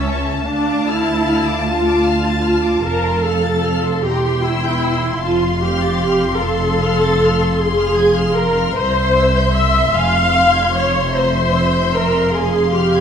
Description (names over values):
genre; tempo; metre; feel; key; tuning
classical, slow romantic movement for string orchestra; 50 BPM (dotted quarters); 6/8; rubato; F minor from 7.6 s; A4 = 440 Hz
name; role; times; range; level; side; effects
warm symphonic violin section; melody; 0.0-13.0 s; A5 to C6; -25 LUFS; left 3 dB; none
warm symphonic violin section; second line; 0.0-13.0 s; E5 to A6; -24 LUFS; left 5 dB; none
warm symphonic viola section; accompaniment; 0.0-13.0 s; C#4 to F5; -16 LUFS; equal; none
rich studio cello section; bass; 0.0-13.0 s; C2 to F2; -22 LUFS; right 2 dB; none
warm symphonic double bass section; bass; 0.0-13.0 s; E1 to D2; -22 LUFS; right 2 dB; none
room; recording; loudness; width
moderate scoring stage reverb, RT60 1.6 s; none; -14 LUFS; side -8 dB against mid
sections
0.0-13.0 A section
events
none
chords
0.5 Dm; 2.8 F; 4.0 C/E; 5.2 F; 7.6 Fm; 8.7 C; 9.9 Fm; 11.1 C7/F; 12.3 Fm